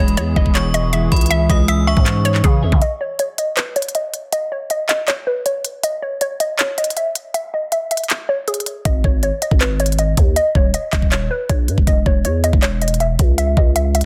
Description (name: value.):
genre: hip hop, trap.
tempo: 159 BPM.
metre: 4/4.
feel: half-time.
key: unclear.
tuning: A4 = 440 Hz.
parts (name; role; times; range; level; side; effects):
hollow square pluck; melody; 0.0-14.1 s; G#4 to E5; -23 LUFS; equal; chorus, low-pass filter.
metallic FM bell; second line; 0.0-2.4 s; B5 to E6; -29 LUFS; equal; chorus, tape echo.
clean electric guitar; accompaniment; 0.0-2.8 s; E3 to E5; -23 LUFS; equal; low-pass filter.
musette accordion; sustained chords; 0.0-2.8 s; E3 to G#4; -33 LUFS; equal; none.
growling 808-style bass; bass; 0.0-2.8, 8.9-14.0 s; D#1 to C#3; -21 LUFS; equal; none.
trap drum kit; drums; 0.1-14.1 s; handclaps, hi-hat, kick drum; -19 LUFS; equal; none.
room: light reverb, digital ambience.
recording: dense, heavily limited modern master.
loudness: -17 LUFS.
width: mono.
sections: 0.0-2.8 A section; 2.8-14.1 B section.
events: break 2.8-8.9; filter sweep 2.8-14.1.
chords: 0.0 E; 1.3 C#m; 2.8 N.C.; 8.9 G#5; 10.4 D#5; 11.9 C#madd9/E; 13.4 C#m.